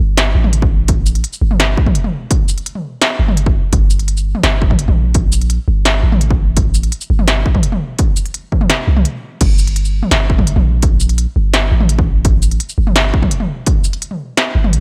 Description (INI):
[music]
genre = half-time drum and bass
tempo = 169 BPM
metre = 4/4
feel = half-time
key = G minor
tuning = A4 = 440 Hz
[part]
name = long sustained 808-style bass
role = bass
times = 0.0-14.8 s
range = G1 to C2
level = -16 LUFS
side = equal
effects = none
[part]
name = industrial drum kit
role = drums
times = 0.2-14.8 s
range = crash cymbal, hi-hat, shaker, snare drum, toms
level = -19 LUFS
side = equal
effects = none
[part]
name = electronic kick drum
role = drums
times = 0.6-13.7 s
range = none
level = -17 LUFS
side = equal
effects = none
[sound]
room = little or no reverb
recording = none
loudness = -14 LUFS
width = mono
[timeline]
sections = 0.0-14.8 A section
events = break 9.1-9.4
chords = none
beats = 0.18 0.53 | 0.89 1.24 1.60 1.95 | 2.31 2.66 3.02 3.37 | 3.73 4.08 4.44 4.79 | 5.15 5.50 5.86 6.21 | 6.57 6.92 7.28 7.63 | 7.99 8.34 8.70 9.05 | 9.41 9.76 10.12 10.47 | 10.83 11.18 11.54 11.89 | 12.25 12.60 12.96 13.31 | 13.67 14.02 14.38 14.73